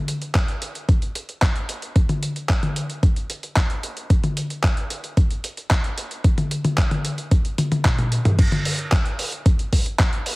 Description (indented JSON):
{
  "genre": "italo disco",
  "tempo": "112 BPM",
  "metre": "4/4",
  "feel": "straight",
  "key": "none",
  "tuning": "none",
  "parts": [
    { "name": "dusty soul sampler-style drum kit", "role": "drums", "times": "0.1-10.4 s", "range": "crash cymbal, handclaps, hi-hat, toms", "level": "-23 LUFS", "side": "equal", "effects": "overdrive, studio ambience" },
    { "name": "electronic kick drum", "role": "drums", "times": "0.3-10.1 s", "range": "none", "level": "-18 LUFS", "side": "equal", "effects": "overdrive, studio ambience" }
  ],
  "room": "digital ambience",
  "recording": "heavily compressed radio sound, multiband compression, vinyl crackle",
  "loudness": "-19 LUFS",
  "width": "side -23 dB against mid",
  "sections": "0.0-8.4 A section; 8.4-10.4 B section",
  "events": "drum fill 7.6-8.4",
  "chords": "none",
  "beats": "0.35 0.89 1.42 | 1.96 2.49 3.03 3.56 | 4.10 4.64 5.17 5.71 | 6.24 6.78 7.32 7.85 | 8.39 8.92 9.46 9.99"
}